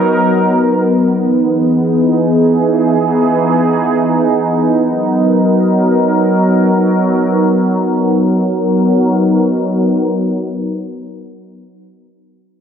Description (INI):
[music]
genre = hip hop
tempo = free time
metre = none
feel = none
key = B major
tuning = A4 = 444 Hz
[part]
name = sweeping resonant pad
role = solo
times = 0.0-11.5 s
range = E3 to A#4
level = -11 LUFS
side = equal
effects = chorus, tape echo
[sound]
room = moderate lush hall reverb, RT60 2.5 s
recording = dark, warm production, low-pass filter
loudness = -11 LUFS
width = side -8 dB against mid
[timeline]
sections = 0.0-8.5 A section; 8.5-12.1 B section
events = filter sweep 0.0-8.5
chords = 0.0 Bmaj7; 1.2 Emaj7; 4.8 Bmaj7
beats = free time